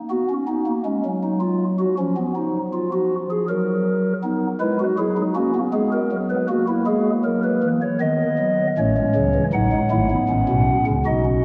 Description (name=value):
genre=classical, baroque-style 4-part fugue for pipe organ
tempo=80 BPM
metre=3/4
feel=straight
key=B major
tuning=A4 = 442 Hz
part: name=pipe organ, stopped flute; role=solo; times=0.1-11.4 s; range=G#1 to F#5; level=-21 LUFS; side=equal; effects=none
room=wet cathedral reverb, RT60 4.3 s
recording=worn, warbling old tape, cassette tape, warbly pitch drift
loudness=-21 LUFS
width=mono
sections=0.0-8.8 A section; 8.8-11.4 B section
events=none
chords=0.0 F#; 1.2 D#madd9/F#; 2.0 N.C.; 3.5 F#; 4.2 B; 5.7 G#m9; 6.5 F#7; 8.0 B/D#; 8.8 F#m/A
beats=0.48 1.23 | 1.98 2.73 3.48 | 4.23 4.98 5.74 | 6.49 7.25 8.01 | 8.78 9.54 10.30 | 11.06